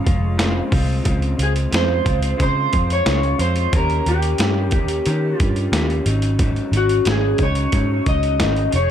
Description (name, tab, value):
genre	indie pop, bedroom pop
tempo	90 BPM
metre	4/4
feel	straight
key	Db major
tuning	A4 = 441 Hz
part	electric slide guitar	melody	0.0-8.9 s	Gb4 to Eb5	-22 LUFS	equal	wide subtle chorus, tape echo
part	electric guitar through a small old amp	accompaniment	0.0-8.9 s	Ab2 to Ab4	-24 LUFS	left 1 dB	lush chorus, vibrato effect
part	lush unison pad	sustained chords	0.0-1.0 s	Bb2 to F4	-38 LUFS	equal	none
part	vintage muted picked electric bass	bass	0.1-8.9 s	F1 to Eb3	-20 LUFS	equal	none
part	boom bap sampler-style drum kit	drums	0.1-8.9 s	hi-hat, kick drum, snare drum	-22 LUFS	equal	overdrive
room	digital ambience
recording	none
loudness	-16 LUFS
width	side -9 dB against mid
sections	0.0-1.1 A section; 1.1-8.9 B section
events	none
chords	0.0 Dbmaj7; 3.7 Eb7; 6.1 Ab7sus4